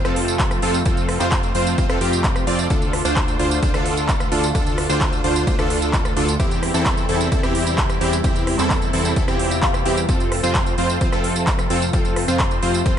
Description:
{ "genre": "EDM, festival progressive house", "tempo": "130 BPM", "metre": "4/4", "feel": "straight", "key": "F major", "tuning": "A4 = 440 Hz", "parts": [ { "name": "lush unison pad", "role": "sustained chords", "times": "0.0-13.0 s", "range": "C3 to F4", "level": "-28 LUFS", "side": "equal", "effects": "chorus, phaser, sidechain pumping" }, { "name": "supersaw stab", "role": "riff", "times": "0.0-12.9 s", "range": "C4 to D5", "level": "-22 LUFS", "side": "equal", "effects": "sidechain pumping, dub echo" }, { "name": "fat analog bass", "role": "bass", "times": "0.0-12.9 s", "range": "D2 to F2", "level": "-24 LUFS", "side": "equal", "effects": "sidechain pumping" }, { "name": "big-room dance drum kit", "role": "drums", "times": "0.0-13.0 s", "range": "handclaps, hi-hat, rim click, tambourine", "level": "-25 LUFS", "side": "right 1 dB", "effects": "overdrive" }, { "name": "electronic kick drum", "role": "drums", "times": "0.4-12.9 s", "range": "none", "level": "-22 LUFS", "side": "equal", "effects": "overdrive" }, { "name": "swell", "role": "sound effects", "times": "9.4-10.1 s", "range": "none", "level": "-29 LUFS", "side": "left 5 dB", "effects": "none" } ], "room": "light reverb", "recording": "nothing above 10.6 kHz", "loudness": "-17 LUFS", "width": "side -9 dB against mid", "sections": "0.0-13.0 A section", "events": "swell 9.4-10.1", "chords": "0.0 F; 2.7 Dm; 6.4 C/E; 10.1 F", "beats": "0.40 | 0.86 1.32 1.78 2.24 | 2.70 3.17 3.63 4.09 | 4.55 5.01 5.47 5.93 | 6.40 6.86 7.32 7.78 | 8.24 8.70 9.16 9.63 | 10.09 10.55 11.01 11.47 | 11.93 12.40 12.86" }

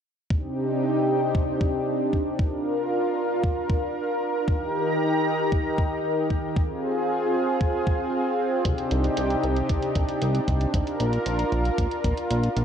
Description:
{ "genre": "synthwave", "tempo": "115 BPM", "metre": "4/4", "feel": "straight", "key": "C minor", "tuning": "A4 = 444 Hz", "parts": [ { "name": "lush unison pad", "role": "sustained chords", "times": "0.3-12.6 s", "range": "C3 to Bb5", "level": "-24 LUFS", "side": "equal", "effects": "chorus, sidechain pumping" }, { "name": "electronic kick drum", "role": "drums", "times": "0.3-12.1 s", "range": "none", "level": "-25 LUFS", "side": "equal", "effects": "none" }, { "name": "chorused synth bass", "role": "bass", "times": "8.7-12.6 s", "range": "Bb1 to C2", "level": "-24 LUFS", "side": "equal", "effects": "sidechain pumping" }, { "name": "electronic hi-hat", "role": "drums", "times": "8.7-12.6 s", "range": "none", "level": "-39 LUFS", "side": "right 3 dB", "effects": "low-pass filter on hats, low-pass filter on room" } ], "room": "wet cathedral reverb, RT60 5.2 s", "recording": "dreamy mix soaked in reverb", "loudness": "-22 LUFS", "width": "side -8 dB against mid", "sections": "0.3-12.6 A section", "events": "none", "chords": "0.3 Cmadd9; 2.4 Bb; 4.5 Eb; 6.6 Fm; 8.7 Cmadd9; 10.7 Bb", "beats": "| 0.30 0.83 1.35 1.87 | 2.39 2.91 3.44 3.96 | 4.48 5.00 5.52 6.04 | 6.57 7.09 7.61 8.13 | 8.65 9.18 9.70 10.22 | 10.74 11.26 11.78 12.30" }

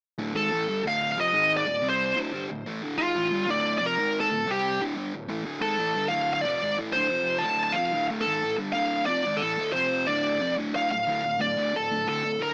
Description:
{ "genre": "metal", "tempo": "182 BPM", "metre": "4/4", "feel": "straight", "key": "D phrygian", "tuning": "A4 = 440 Hz", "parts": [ { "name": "sludgy distorted guitar", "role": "riff", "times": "0.2-12.5 s", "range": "D2 to C4", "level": "-33 LUFS", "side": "equal", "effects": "overdrive" }, { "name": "high-gain lead guitar", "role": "melody", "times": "0.4-12.5 s", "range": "F4 to A5", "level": "-27 LUFS", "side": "equal", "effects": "distortion, digital delay" } ], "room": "light reverb", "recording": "rough home demo mix, small speaker sound", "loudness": "-26 LUFS", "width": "mono", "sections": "0.2-10.7 A section; 10.7-12.5 B section", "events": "none", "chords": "0.2 Dm; 1.3 G#5; 1.7 D5; 1.8 C5; 2.2 Dm; 4.0 G#5; 4.3 D5; 4.5 C5; 4.8 Dm; 7.1 F5; 7.4 Dm; 9.7 F5; 10.1 Dm", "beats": "| 0.18 0.51 0.84 1.17 | 1.50 1.83 2.16 2.49 | 2.82 3.15 3.48 3.81 | 4.14 4.47 4.80 5.13 | 5.46 5.79 6.12 6.45 | 6.78 7.11 7.44 7.77 | 8.10 8.43 8.76 9.09 | 9.42 9.75 10.08 10.41 | 10.74 11.07 11.40 11.73 | 12.06 12.39" }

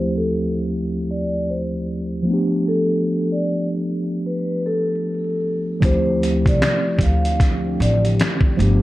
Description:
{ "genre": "lo-fi hip hop", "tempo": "76 BPM", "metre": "4/4", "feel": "swing 62% on 16ths", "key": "D dorian", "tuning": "A4 = 441 Hz", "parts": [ { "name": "vibraphone with soft mallets", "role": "melody", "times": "0.0-8.0 s", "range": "A4 to F5", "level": "-24 LUFS", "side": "left 1 dB", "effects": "tape echo" }, { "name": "mellow tine electric piano", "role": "accompaniment", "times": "0.0-8.8 s", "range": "D2 to G4", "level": "-21 LUFS", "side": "equal", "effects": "medium stereo tremolo" }, { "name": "deep dark ambient pad", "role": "sustained chords", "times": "7.2-8.8 s", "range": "D3 to B4", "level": "-29 LUFS", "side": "equal", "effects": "chorus, built-in reverb" }, { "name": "upright bass", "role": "bass", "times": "5.8-8.8 s", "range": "G1 to D2", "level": "-20 LUFS", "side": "equal", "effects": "none" }, { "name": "dusty soul sampler-style drum kit", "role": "drums", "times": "5.8-8.8 s", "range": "finger snaps, hi-hat, kick drum, snare drum", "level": "-19 LUFS", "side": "equal", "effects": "none" } ], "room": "light reverb", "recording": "dark, warm production, vinyl crackle, low-pass filter", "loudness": "-18 LUFS", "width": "side -16 dB against mid", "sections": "0.0-5.8 A section; 5.8-8.8 B section", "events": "filter sweep 0.0-5.8", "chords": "0.0 Dm11; 2.3 G9; 5.8 Dm11", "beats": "0.29 1.08 1.87 | 2.66 3.45 4.24 5.03 | 5.82 6.61 7.40 8.19" }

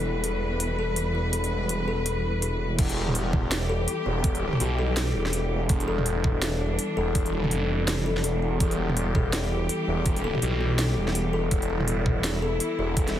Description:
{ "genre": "half-time drum and bass", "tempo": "165 BPM", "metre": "4/4", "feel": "swing 60% on 16ths, half-time", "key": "E minor", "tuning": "A4 = 441 Hz", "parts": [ { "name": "warm studio cello section", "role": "sustained chords", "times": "0.0-13.2 s", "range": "E3 to B4", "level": "-30 LUFS", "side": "right 1 dB", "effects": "sidechain pumping" }, { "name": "kalimba", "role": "arpeggios", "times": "0.0-13.2 s", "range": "E4 to A4", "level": "-32 LUFS", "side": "left 7 dB", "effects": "dub echo" }, { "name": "phased detuned saw bass", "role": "bass", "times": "0.0-13.2 s", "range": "E1 to B1", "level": "-27 LUFS", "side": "right 1 dB", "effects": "phaser" }, { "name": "drum and bass drum kit", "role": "drums", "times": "0.2-13.1 s", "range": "crash cymbal, hi-hat, snare drum, toms", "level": "-30 LUFS", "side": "right 1 dB", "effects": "none" }, { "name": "electronic kick drum", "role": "drums", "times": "2.8-13.1 s", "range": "none", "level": "-26 LUFS", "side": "right 1 dB", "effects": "overdrive" } ], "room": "light reverb", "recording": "heavily compressed radio sound", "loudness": "-23 LUFS", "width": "side -11 dB against mid", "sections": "0.0-2.8 A section; 2.8-13.2 B section", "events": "drop 2.8-13.2", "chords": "0.0 Em", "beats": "0.24 0.61 0.97 | 1.33 1.70 2.06 2.42 | 2.79 3.15 3.52 3.88 | 4.24 4.61 4.97 5.33 | 5.70 6.06 6.42 6.79 | 7.15 7.51 7.88 8.24 | 8.61 8.97 9.33 9.70 | 10.06 10.42 10.79 11.15 | 11.52 11.88 12.24 12.61 | 12.97" }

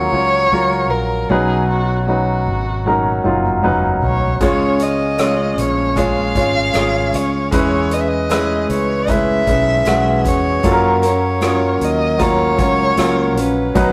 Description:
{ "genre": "pop ballad", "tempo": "77 BPM", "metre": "4/4", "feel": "straight", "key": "F# major", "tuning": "A4 = 440 Hz", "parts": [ { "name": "dark violin", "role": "melody", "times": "0.0-13.9 s", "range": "F#4 to E#5", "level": "-22 LUFS", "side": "equal", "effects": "none" }, { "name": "clear baby grand piano", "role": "accompaniment", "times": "0.0-13.9 s", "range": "B2 to C#5", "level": "-20 LUFS", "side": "equal", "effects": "none" }, { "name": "fretless electric bass", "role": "bass", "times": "0.0-13.9 s", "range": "F#1 to F#2", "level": "-24 LUFS", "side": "equal", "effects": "none" }, { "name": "soft-mallet drum kit", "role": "drums", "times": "2.8-13.9 s", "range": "hi-hat, kick drum, rim click, toms", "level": "-26 LUFS", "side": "equal", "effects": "none" }, { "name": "picked steel-string acoustic guitar", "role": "arpeggios", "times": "4.4-13.9 s", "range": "B2 to B4", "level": "-23 LUFS", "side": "equal", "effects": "none" } ], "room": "moderate stone room reverb, RT60 1.1 s", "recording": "rough rehearsal-room recording", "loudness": "-16 LUFS", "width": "mono", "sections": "0.0-13.9 A section", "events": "drum fill 2.9-4.4", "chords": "0.0 F#maj7; 1.3 Badd9; 4.4 C#; 7.5 E6; 10.6 F#maj7", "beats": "0.51 | 1.29 2.07 2.85 3.63 | 4.41 5.19 5.97 6.75 | 7.53 8.30 9.08 9.86 | 10.64 11.42 12.20 12.98 | 13.76" }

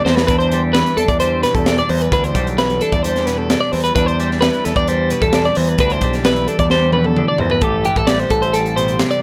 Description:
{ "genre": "math rock and midwest emo", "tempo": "131 BPM", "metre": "4/4", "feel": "straight", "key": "A minor", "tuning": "A4 = 438 Hz", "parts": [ { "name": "twelve-string electric guitar", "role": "accompaniment", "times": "0.0-9.2 s", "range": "E2 to A4", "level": "-24 LUFS", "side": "equal", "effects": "subtle chorus" }, { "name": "twelve-string electric guitar", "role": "arpeggios", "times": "0.0-9.2 s", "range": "G4 to D5", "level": "-20 LUFS", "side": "equal", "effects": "none" }, { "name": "growling fingered electric bass", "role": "bass", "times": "0.0-9.0 s", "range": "A1 to E2", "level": "-23 LUFS", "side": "equal", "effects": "overdrive" }, { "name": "crisp fusion drum kit", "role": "drums", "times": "0.1-9.2 s", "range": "hi-hat, kick drum, snare drum, toms", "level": "-22 LUFS", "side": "equal", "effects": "none" } ], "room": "light reverb", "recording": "none", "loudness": "-16 LUFS", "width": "mono", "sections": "0.0-7.6 A section; 7.6-9.2 B section", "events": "drum fill 0.0, 6.7-7.6", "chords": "0.0 Em7; 7.6 Am7", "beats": "| 0.29 0.75 1.21 1.67 | 2.12 2.58 3.04 3.50 | 3.96 4.41 4.87 5.33 | 5.79 6.25 6.71 7.17 | 7.62 8.08 8.54 9.00" }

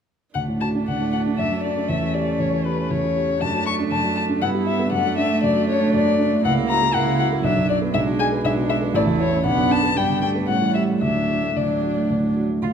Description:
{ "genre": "quick classical-period movement for piano quartet", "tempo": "118 BPM", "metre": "3/4", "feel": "rubato", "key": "D major", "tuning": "A4 = 440 Hz", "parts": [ { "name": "dark violin", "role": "melody", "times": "0.3-12.1 s", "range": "B4 to C#6", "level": "-23 LUFS", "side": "left 6 dB", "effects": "none" }, { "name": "dark baby grand piano", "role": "accompaniment", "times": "0.3-12.7 s", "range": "A1 to G#4", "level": "-22 LUFS", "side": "equal", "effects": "none" }, { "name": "clear cello", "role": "second line", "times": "0.4-12.7 s", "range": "F#3 to F4", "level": "-26 LUFS", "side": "right 8 dB", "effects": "none" }, { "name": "dark viola", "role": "accompaniment", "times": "0.4-12.7 s", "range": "A3 to E4", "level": "-28 LUFS", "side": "right 3 dB", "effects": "none" } ], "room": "wet recital hall reverb, RT60 1.5 s", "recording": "minimal, uncompressed stereo recording", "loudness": "-18 LUFS", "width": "side -7 dB against mid", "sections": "0.4-12.6 A section", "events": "none", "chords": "0.4 D; 1.4 D/F#; 1.9 A7/E; 3.4 D/F#; 4.4 Em/G; 4.9 D/F#; 6.4 F#7/C#; 7.4 Bm; 7.9 E7/B (rootless); 8.9 A; 9.5 Bm; 10.0 G; 10.5 A7; 11.0 D", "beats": "| 0.35 0.87 1.39 | 1.89 2.40 2.91 | 3.42 3.92 4.43 | 4.93 5.43 5.94 | 6.44 6.94 7.44 | 7.94 8.45 8.95 | 9.45 9.96 10.48 | 11.02 11.56 12.09 | 12.62" }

